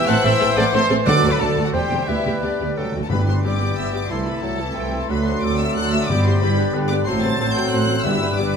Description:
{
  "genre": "classical, dramatic, fast romantic movement for symphony orchestra",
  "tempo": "182 BPM",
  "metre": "3/4",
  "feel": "rubato",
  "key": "G major",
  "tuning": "A4 = 444 Hz",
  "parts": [
    { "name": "clear symphonic violin section", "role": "melody", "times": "0.0-8.6 s", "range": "D5 to A6", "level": "-27 LUFS", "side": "left 3 dB", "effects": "none" },
    { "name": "bright oboe", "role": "second line", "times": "0.0-8.6 s", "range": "G4 to C5", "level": "-32 LUFS", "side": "right 2 dB", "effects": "none" },
    { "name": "clear clarinet", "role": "second line", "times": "0.0-8.6 s", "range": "B3 to E5", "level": "-30 LUFS", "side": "left 3 dB", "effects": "none" },
    { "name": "large flute ensemble", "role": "second line", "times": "0.0-8.6 s", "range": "D5 to F#6", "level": "-30 LUFS", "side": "equal", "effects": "none" },
    { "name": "warm symphonic violin section", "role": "second line", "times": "0.0-8.6 s", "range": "G4 to A5", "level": "-30 LUFS", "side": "left 4 dB", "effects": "none" },
    { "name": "warm bassoon", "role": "accompaniment", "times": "0.0-8.6 s", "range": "D3 to G3", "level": "-29 LUFS", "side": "right 2 dB", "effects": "none" },
    { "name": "dark French horn section", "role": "sustained chords", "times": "0.0-8.6 s", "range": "E3 to C5", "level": "-26 LUFS", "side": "left 6 dB", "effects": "none" },
    { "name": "mellow trumpet", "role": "stabs", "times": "0.0-8.6 s", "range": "D4 to F#5", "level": "-28 LUFS", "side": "right 1 dB", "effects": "none" },
    { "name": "rich symphonic viola section", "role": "accompaniment", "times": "0.1-8.4 s", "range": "A3 to A4", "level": "-28 LUFS", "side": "equal", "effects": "none" },
    { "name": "rich symphonic cello section", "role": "bass", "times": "0.1-8.6 s", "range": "C2 to A2", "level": "-25 LUFS", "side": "right 3 dB", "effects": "none" },
    { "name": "rich symphonic double bass section", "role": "bass", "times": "0.1-8.6 s", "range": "E1 to D2", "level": "-25 LUFS", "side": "right 3 dB", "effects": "none" },
    { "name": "timpani", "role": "percussion", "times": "1.1-3.6, 6.1-8.5 s", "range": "G2 to D3", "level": "-24 LUFS", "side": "left 1 dB", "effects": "none" }
  ],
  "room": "wet concert hall reverb, RT60 2.1 s",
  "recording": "none",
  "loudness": "-17 LUFS",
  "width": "side -6 dB against mid",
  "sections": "0.0-3.1 A section; 3.1-8.6 B section",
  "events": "timpani fill 2.8-3.1",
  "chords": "0.1 Am; 1.1 D; 1.7 C; 2.1 G/D; 2.8 D; 3.1 G; 4.1 Am/C; 5.1 D7; 6.1 G; 7.1 F#dim/A; 8.0 G"
}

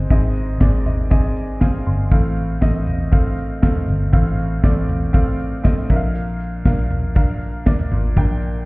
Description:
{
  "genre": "piano-driven pop",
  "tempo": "119 BPM",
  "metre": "4/4",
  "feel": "straight",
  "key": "unclear",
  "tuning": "A4 = 440 Hz",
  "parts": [
    { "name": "bright upright piano", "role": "accompaniment", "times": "0.0-8.7 s", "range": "Ab2 to C6", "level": "-25 LUFS", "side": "right 1 dB", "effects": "none" },
    { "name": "vintage muted fingered electric bass", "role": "bass", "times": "0.0-8.6 s", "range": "G1 to Bb1", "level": "-20 LUFS", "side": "equal", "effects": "none" },
    { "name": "modern studio drum kit", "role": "drums", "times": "0.1-8.5 s", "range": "hi-hat, kick drum, snare drum, toms", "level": "-16 LUFS", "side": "equal", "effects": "none" }
  ],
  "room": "small room ambience",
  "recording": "heard muffled through a wall, stone room reverb, EQ",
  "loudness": "-16 LUFS",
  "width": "side -24 dB against mid",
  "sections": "0.0-8.7 A section",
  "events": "upright piano fill 0.6-2.1",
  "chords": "0.0 Ab; 2.1 F; 5.9 Bb"
}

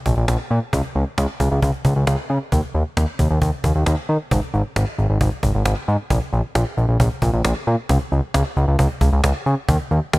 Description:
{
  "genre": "synth-pop",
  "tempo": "134 BPM",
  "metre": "4/4",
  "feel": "straight",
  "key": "unclear",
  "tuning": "A4 = 439 Hz",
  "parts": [
    { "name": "fat analog bass", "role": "bass", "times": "0.1-10.2 s", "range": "Ab1 to Eb3", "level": "-17 LUFS", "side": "equal", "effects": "none" },
    { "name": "cajon", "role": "drums", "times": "0.1-10.2 s", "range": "none", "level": "-24 LUFS", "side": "equal", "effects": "none" }
  ],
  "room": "studio ambience",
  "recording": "dark, warm production",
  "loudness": "-17 LUFS",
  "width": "side -21 dB against mid",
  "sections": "0.0-4.3 A section; 4.3-10.2 B section",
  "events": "none",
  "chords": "none"
}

